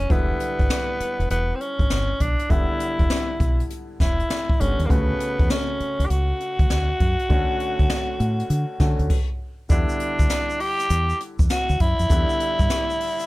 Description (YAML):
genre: R&B, new jack swing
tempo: 100 BPM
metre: 4/4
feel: swing 64% on 16ths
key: E dorian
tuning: A4 = 441 Hz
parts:
  - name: growling tenor saxophone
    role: melody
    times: 0.0-13.3 s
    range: A#3 to G4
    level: -25 LUFS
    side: equal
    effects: slapback echo
  - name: clear baby grand piano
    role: accompaniment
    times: 0.0-13.3 s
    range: C#3 to F#4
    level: -31 LUFS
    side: left 1 dB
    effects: none
  - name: deep dub fingered electric bass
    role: bass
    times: 0.0-12.7 s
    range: E1 to D3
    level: -23 LUFS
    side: equal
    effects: none
  - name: jazz brush drum kit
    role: drums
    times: 0.1-13.3 s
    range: crash cymbal, hi-hat, kick drum, snare drum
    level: -22 LUFS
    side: equal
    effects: gated reverb
  - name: egg shaker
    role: percussion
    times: 9.7-13.3 s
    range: none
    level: -41 LUFS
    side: left 3 dB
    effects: none
room: little or no reverb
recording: none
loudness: -19 LUFS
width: side -19 dB against mid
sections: 0.0-9.7 A section; 9.7-13.3 B section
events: stop 9.1-9.7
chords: 0.1 Em7; 4.9 Dmaj7; 9.7 Em7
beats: | 0.10 0.70 1.30 1.90 | 2.50 3.10 3.70 4.30 | 4.90 5.50 6.10 6.70 | 7.30 7.90 8.50 9.10 | 9.70 10.30 10.90 11.50 | 12.10 12.70